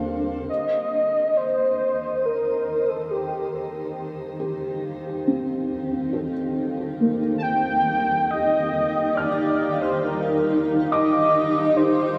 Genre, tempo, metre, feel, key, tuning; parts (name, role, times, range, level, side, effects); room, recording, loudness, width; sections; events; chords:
ambient; 69 BPM; 4/4; straight; Eb lydian; A4 = 440 Hz
granular cloud pad; sustained chords; 0.0-12.2 s; Eb3 to F5; -29 LUFS; equal; built-in reverb, lush chorus, shimmer reverb
felt-muted upright piano; arpeggios; 0.0-12.2 s; Bb3 to F6; -29 LUFS; equal; analog chorus, shimmer reverb, diffuse ambient delay
analog drone; drone; 0.0-0.6, 9.2-12.2 s; Eb3; -35 LUFS; equal; chorus
warm velvety synth lead; melody; 0.5-12.2 s; G4 to A5; -25 LUFS; equal; chorus, shimmer reverb, diffuse ambient delay
wet huge ambient reverb, RT60 8.3 s; dreamy mix soaked in reverb, small room ambience; -23 LUFS; mono
0.5-12.2 A section
fade-in on ambient pad 0.5-12.2
0.5 Ebadd9